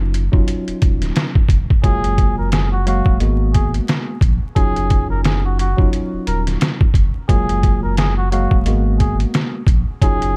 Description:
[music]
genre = hip hop, boom-bap hip-hop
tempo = 88 BPM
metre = 4/4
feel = swing 58% on 16ths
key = Eb minor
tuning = A4 = 440 Hz
[part]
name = tine electric piano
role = accompaniment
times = 0.0-10.4 s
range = Gb3 to F5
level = -26 LUFS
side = equal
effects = cassette tape, high-pass filter, low-pass filter
[part]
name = warm sub bass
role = bass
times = 0.0-10.4 s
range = Eb1 to Bb1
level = -21 LUFS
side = equal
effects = none
[part]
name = trip hop sampler-style drum kit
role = drums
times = 0.1-10.4 s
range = hi-hat, kick drum, snare drum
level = -18 LUFS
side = equal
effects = none
[part]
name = trumpet with cup mute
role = melody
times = 1.8-10.4 s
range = Gb4 to Bb4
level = -27 LUFS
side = equal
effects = high-pass filter, low-pass filter, tape echo
[sound]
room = little or no reverb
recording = dark, warm production, vinyl crackle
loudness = -17 LUFS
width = mono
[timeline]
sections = 0.0-10.4 A section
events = break 0.0-1.8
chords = 0.0 Ebm9/Gb; 1.8 Gbmaj9; 3.2 Abm9; 4.6 Ebm9/Gb; 7.3 Gbmaj9; 8.7 Abm9

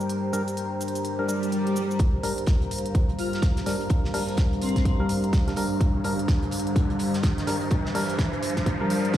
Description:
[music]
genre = bass house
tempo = 126 BPM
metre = 4/4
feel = swing 61% on 16ths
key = G minor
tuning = A4 = 440 Hz
[part]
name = deep dark ambient pad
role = sustained chords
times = 0.0-9.2 s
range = G3 to C5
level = -29 LUFS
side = equal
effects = chorus, built-in reverb, sidechain pumping
[part]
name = electronic shaker and hi-hat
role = drums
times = 0.0-9.2 s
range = none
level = -38 LUFS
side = right 1 dB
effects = none
[part]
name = airy breathy pad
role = texture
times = 0.0-9.2 s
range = G4 to Bb5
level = -34 LUFS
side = right 1 dB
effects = chorus, sidechain pumping
[part]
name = percussive organ stab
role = stabs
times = 0.3-9.2 s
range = G3 to Bb4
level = -30 LUFS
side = left 2 dB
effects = chorus, vintage 12-bit sampler grit, sidechain pumping, digital delay
[part]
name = swell and riser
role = sound effects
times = 1.2-9.2 s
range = none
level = -32 LUFS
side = equal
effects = none
[part]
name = damped 70s drum kit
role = drums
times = 2.0-9.2 s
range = hi-hat, snare drum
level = -40 LUFS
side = right 2 dB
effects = sidechain pumping on hats, high-pass filter on hats, high-pass filter on snare, high-pass filter on room
[part]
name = electronic kick drum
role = drums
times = 2.0-9.2 s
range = none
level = -23 LUFS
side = equal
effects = none
[part]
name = airy dreamy lead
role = melody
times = 3.2-5.0 s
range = C4 to F4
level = -34 LUFS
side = left 3 dB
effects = chorus, phaser, digital delay
[sound]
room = moderate lush hall reverb, RT60 2.1 s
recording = played on a big sound system in a bare room, stone room reverb, high-pass filter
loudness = -22 LUFS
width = side -12 dB against mid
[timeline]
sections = 0.0-2.0 A section; 2.0-9.2 B section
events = swell 1.2-2.0; build-up 2.0-9.2; riser 2.0-9.2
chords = 0.0 Gm

